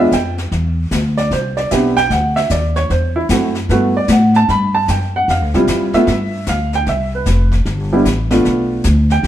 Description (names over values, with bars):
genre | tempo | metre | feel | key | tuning
jazz piano trio | 151 BPM | 4/4 | swing 65% on 8ths | unclear | A4 = 442 Hz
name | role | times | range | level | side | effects
warm baby grand piano | melody | 0.0-9.3 s | G3 to B5 | -15 LUFS | right 1 dB | none
upright bass | bass | 0.0-9.3 s | F1 to A2 | -16 LUFS | left 1 dB | none
jazz brush drum kit | drums | 0.1-9.3 s | brushed snare drum, hi-hat, kick drum, snare drum | -25 LUFS | left 3 dB | none
room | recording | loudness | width
moderate stone room reverb, RT60 1.1 s | band playing live in one room | -13 LUFS | side -12 dB against mid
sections
0.5-9.3 A section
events
none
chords
0.0 E7b9; 0.5 Cmaj9; 2.1 D9; 3.7 Gmaj9; 5.3 Dm11; 6.1 G5; 6.9 Cmaj7; 8.4 Bm7b5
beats
0.12 | 0.52 0.92 1.31 1.71 | 2.11 2.50 2.90 3.30 | 3.69 4.09 4.49 4.88 | 5.28 5.67 6.07 6.47 | 6.86 7.26 7.66 8.05 | 8.45 8.85 9.24